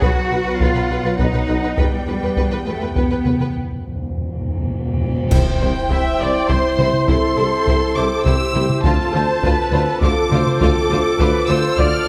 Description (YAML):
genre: cinematic, epic orchestral film score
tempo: 102 BPM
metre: 3/4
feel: straight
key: unclear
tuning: A4 = 440 Hz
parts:
  - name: warm symphonic violin section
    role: melody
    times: 0.0-12.1 s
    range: F#5 to F6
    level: -27 LUFS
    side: equal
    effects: none
  - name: warm symphonic violin section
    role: second line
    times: 0.0-11.9 s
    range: E4 to C5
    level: -30 LUFS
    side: equal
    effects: none
  - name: warm symphonic viola section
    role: accompaniment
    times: 0.0-12.1 s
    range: F4 to E5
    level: -26 LUFS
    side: equal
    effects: none
  - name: warm French horn section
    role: sustained chords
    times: 0.0-12.1 s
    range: F#3 to G4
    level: -27 LUFS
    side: equal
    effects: none
  - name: rich symphonic cello section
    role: bass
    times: 0.0-11.9 s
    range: C3 to F#4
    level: -27 LUFS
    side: equal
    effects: none
  - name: rich symphonic double bass section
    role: bass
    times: 0.0-11.9 s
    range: B1 to E2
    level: -27 LUFS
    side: equal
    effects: none
  - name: warm tuba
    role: bass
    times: 0.0-11.9 s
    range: E1 to D2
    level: -28 LUFS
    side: equal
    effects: none
  - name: solo taiko drums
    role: drums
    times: 0.0-12.1 s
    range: none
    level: -23 LUFS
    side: equal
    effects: none
  - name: cymbal swell, clash cymbals and concert bass drum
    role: percussion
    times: 1.8-6.4 s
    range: none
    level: -28 LUFS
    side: equal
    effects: none
  - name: timpani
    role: percussion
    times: 1.8-5.3 s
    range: E2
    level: -28 LUFS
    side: equal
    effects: none
  - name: dark trumpet section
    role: stabs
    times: 5.3-12.1 s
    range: A4 to C5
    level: -28 LUFS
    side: equal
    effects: none
room: moderate scoring stage reverb, RT60 1.5 s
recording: none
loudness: -18 LUFS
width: mono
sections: 0.0-5.3 A section; 5.3-12.1 A section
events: timpani fill 1.8-5.3; break 3.5-5.3; drum fill 4.9-5.3; band accent 5.3-5.9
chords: 0.0 B; 1.8 Em; 5.3 C; 8.8 Dm7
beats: | 0.02 0.61 1.19 | 1.78 2.37 2.96 | 3.55 4.13 4.72 | 5.31 5.90 6.49 | 7.08 7.66 8.25 | 8.84 9.43 10.02 | 10.61 11.19 11.78